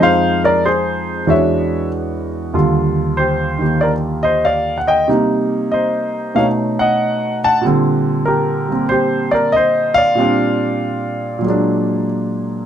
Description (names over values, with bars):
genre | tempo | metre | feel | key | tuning
solo jazz | 94 BPM | 4/4 | swing 67% on 8ths | Bb major | A4 = 441 Hz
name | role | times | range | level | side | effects
warm concert grand piano | solo | 0.0-12.7 s | Eb2 to A5 | -14 LUFS | equal | none
room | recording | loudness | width
light reverb | close, detailed microphones | -14 LUFS | side -9 dB against mid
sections
0.0-12.7 A section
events
none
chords
0.0 Fm7; 1.3 E13; 2.5 Ebmaj9; 5.1 Cm7; 6.4 B9; 7.6 Bb69; 11.4 Bbaug7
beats
| 0.00 0.63 1.27 1.91 | 2.54 3.18 3.81 4.45 | 5.08 5.72 6.36 6.99 | 7.63 8.26 8.90 9.54 | 10.17 10.81 11.44 12.08